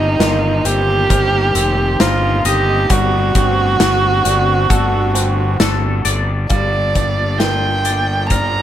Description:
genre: post-rock.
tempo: 67 BPM.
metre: 4/4.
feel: straight.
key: G minor.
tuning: A4 = 440 Hz.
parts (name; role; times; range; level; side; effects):
dark violin; melody; 0.0-8.6 s; Eb4 to Bb5; -17 LUFS; right 3 dB; tape echo.
warm analog pad; sustained chords; 0.0-8.6 s; D3 to F#4; -27 LUFS; left 3 dB; chorus.
felt-muted upright piano; arpeggios; 0.0-8.6 s; Bb4 to F#5; -30 LUFS; right 5 dB; tape echo.
twangy electric guitar; arpeggios; 0.0-8.6 s; G3 to Eb5; -24 LUFS; left 5 dB; analog chorus, tape echo.
fuzz fingered electric bass; bass; 0.0-8.6 s; F1 to G1; -18 LUFS; equal; overdrive.
loose indie drum kit; drums; 0.2-8.5 s; hi-hat, kick drum, snare drum; -18 LUFS; left 1 dB; none.
room: light reverb, studio ambience.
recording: none.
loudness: -13 LUFS.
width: side -11 dB against mid.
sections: 0.0-6.5 A section; 6.5-8.6 B section.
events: none.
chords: 0.0 F7sus4/G; 2.9 D7/G; 6.5 Gm7.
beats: 0.20 1.10 2.00 | 2.90 3.80 4.71 5.61 | 6.51 7.41 8.31.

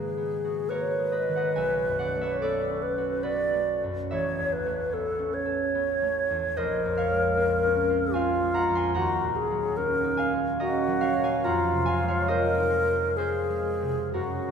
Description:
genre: classical, impressionist duo for alto flute and harp.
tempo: 60-78 BPM.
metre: 3/4.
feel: rubato.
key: unclear.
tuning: A4 = 440 Hz.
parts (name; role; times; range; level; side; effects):
bright alto flute; melody; 0.0-14.5 s; F4 to D5; -26 LUFS; left 1 dB; none.
concert harp; accompaniment; 0.0-14.5 s; A1 to C6; -28 LUFS; right 2 dB; none.
room: wet church reverb, RT60 3.5 s.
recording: recorded in a church or concert hall.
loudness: -24 LUFS.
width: side -6 dB against mid.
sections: 0.0-14.5 A section.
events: none.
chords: 0.0 G#m9; 1.6 Bm9; 4.1 Aadd9; 6.6 Bbm9; 9.0 Ebm9; 11.4 Fm7.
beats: 0.70 | 1.55 2.40 3.23 | 4.11 4.92 5.74 | 6.57 7.37 8.15 | 8.96 9.77 10.60 | 11.44 12.29 13.18 | 14.14.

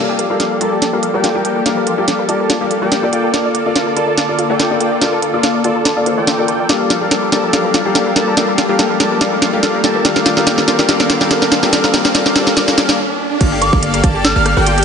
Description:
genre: future bass.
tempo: 143 BPM.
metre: 4/4.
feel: swing 53% on 16ths, half-time.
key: G minor.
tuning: A4 = 440 Hz.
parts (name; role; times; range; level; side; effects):
felt-muted upright piano; accompaniment; 0.0-13.0 s; G3 to D5; -20 LUFS; left 3 dB; sidechain pumping, dub echo.
warm symphonic string section; sustained chords; 0.0-13.0 s; D3 to Bb4; -25 LUFS; right 1 dB; sidechain pumping.
wide unison pluck; arpeggios; 0.0-14.8 s; F4 to F5; -24 LUFS; left 2 dB; sidechain pumping, dub echo.
big bright polysynth; riff; 0.0-14.8 s; Bb3 to A5; -17 LUFS; left 1 dB; sidechain pumping, dub echo.
riser; sound effects; 0.0-13.4 s; none; -25 LUFS; right 1 dB; none.
trap drum kit; drums; 0.2-14.8 s; crash cymbal, hi-hat, rim click, snare drum; -16 LUFS; right 1 dB; studio reverb.
airy dreamy lead; arpeggios; 13.4-14.8 s; F5 to A5; -21 LUFS; right 1 dB; chorus, sidechain pumping.
warm 808-style bass; bass; 13.4-14.8 s; G1; -17 LUFS; right 1 dB; sidechain pumping.
electronic kick drum; drums; 13.4-14.1 s; none; -16 LUFS; right 1 dB; overdrive, studio reverb.
soft synth bell; melody; 13.6-14.6 s; D6 to F6; -18 LUFS; right 1 dB; chorus, tremolo, phaser, sidechain pumping, ping-pong delay.
room: wet lush hall reverb, RT60 1.8 s, digital ambience.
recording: nothing above 10.6 kHz.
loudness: -12 LUFS.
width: side -6 dB against mid.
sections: 0.0-13.4 A section; 13.4-14.8 B section.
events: build-up 0.0-13.4; drum fill 0.0-13.0; riser 0.0-13.4; filter sweep on analog polysynth 0.0-13.4; stop 13.0-13.4; drop 13.4-14.8.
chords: 0.0 Gm9; 3.1 Bbmaj7; 6.7 Gm9; 9.8 Cm9; 13.4 Gm9.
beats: 0.40 0.82 1.24 | 1.66 2.08 2.50 2.92 | 3.34 3.76 4.18 4.59 | 5.01 5.43 5.85 6.27 | 6.69 7.11 7.53 7.95 | 8.37 8.79 9.21 9.63 | 10.05 10.47 10.89 11.31 | 11.73 12.15 12.57 12.99 | 13.41 13.83 14.25 14.66.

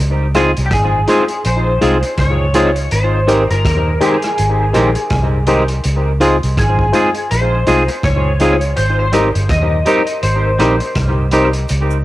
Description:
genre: lovers rock reggae.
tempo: 82 BPM.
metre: 4/4.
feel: swing 59% on 16ths.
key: Ab major.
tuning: A4 = 440 Hz.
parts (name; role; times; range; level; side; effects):
vintage muted fingered electric bass; bass; 0.0-12.0 s; G1 to Eb2; -16 LUFS; equal; none.
tine electric piano; accompaniment; 0.3-11.5 s; Eb4 to C5; -18 LUFS; left 2 dB; medium stereo tremolo, analog delay.
twangy electric guitar; stabs; 0.3-11.5 s; Eb3 to Ab4; -19 LUFS; right 2 dB; analog delay.
vintage drum kit; drums; 0.3-11.9 s; hi-hat, kick drum, rim click; -22 LUFS; equal; cassette tape, analog delay.
electric guitar through a small old amp; melody; 0.7-10.9 s; G4 to Eb5; -19 LUFS; left 1 dB; ensemble chorus, cassette tape, tape echo.
cabasa; percussion; 11.7-12.0 s; none; -42 LUFS; right 7 dB; none.
room: light reverb, small room ambience.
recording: home recording on cassette.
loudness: -12 LUFS.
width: side -16 dB against mid.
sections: 0.0-12.0 A section.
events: none.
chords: 0.0 Dbmaj7; 2.9 Abmaj7; 5.8 Dbmaj7; 8.8 Abmaj7.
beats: 0.71 1.45 2.18 | 2.91 3.64 4.38 5.11 | 5.84 6.57 7.30 8.03 | 8.77 9.50 10.23 10.96 | 11.69.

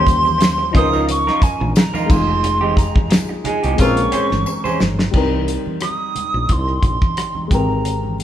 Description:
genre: lush 1970s-style soul.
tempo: 89 BPM.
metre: 4/4.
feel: swing 54% on 16ths.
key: unclear.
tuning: A4 = 440 Hz.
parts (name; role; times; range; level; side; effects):
silver concert flute; melody; 0.0-8.2 s; Ab5 to Eb6; -20 LUFS; right 2 dB; none.
dark grand piano; accompaniment; 0.0-8.2 s; F3 to C5; -23 LUFS; left 2 dB; none.
electric guitar through a small old amp; riff; 0.0-5.0 s; Ab3 to C5; -24 LUFS; right 3 dB; none.
woody fretless electric bass; bass; 0.0-8.2 s; F1 to Eb2; -22 LUFS; equal; none.
damped 70s drum kit; drums; 0.1-8.2 s; crash cymbal, hi-hat, kick drum, rim click, snare drum; -17 LUFS; equal; none.
tambourine; percussion; 0.1-5.0 s; none; -39 LUFS; left 4 dB; none.
congas; percussion; 0.3-8.2 s; none; -28 LUFS; right 2 dB; none.
warm horn section; stabs; 3.8-4.0 s; Db3 to F4; -23 LUFS; left 1 dB; none.
room: moderate large studio reverb, RT60 1.3 s.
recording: band playing live in one room.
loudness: -15 LUFS.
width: side -11 dB against mid.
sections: 0.0-5.1 A section; 5.1-8.2 B section.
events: band accent 2.4-5.1; drum fill 4.5-5.1.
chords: 0.0 Eb13; 0.7 Db69; 2.1 Fm9; 3.8 Bbm9; 5.1 Cm7; 7.5 Abmaj9.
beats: 0.41 1.08 1.76 | 2.43 3.11 3.78 4.46 | 5.14 5.81 6.49 7.17 | 7.84.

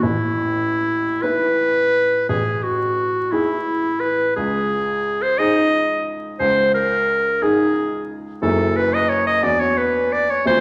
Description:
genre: classical, impressionist duo for clarinet and grand piano.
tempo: 49-61 BPM (dotted quarters).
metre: 6/8.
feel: rubato.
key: A lydian.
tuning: A4 = 440 Hz.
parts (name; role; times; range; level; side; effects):
clear clarinet; melody; 0.0-10.6 s; E4 to D#5; -20 LUFS; equal; none.
dark baby grand piano; accompaniment; 0.0-10.6 s; F#1 to B4; -25 LUFS; equal; none.
room: wet recital hall reverb, RT60 1.5 s.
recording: vinyl crackle.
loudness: -19 LUFS.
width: mono.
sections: 0.0-10.6 A section.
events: none.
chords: 0.0 Asus2; 2.3 Eadd9/A; 4.4 C#sus2; 8.4 F#sus2; 9.4 Esus2.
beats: | 0.03 1.22 | 2.29 3.32 | 4.36 5.39 | 6.39 7.42 | 8.42 9.42 | 10.46.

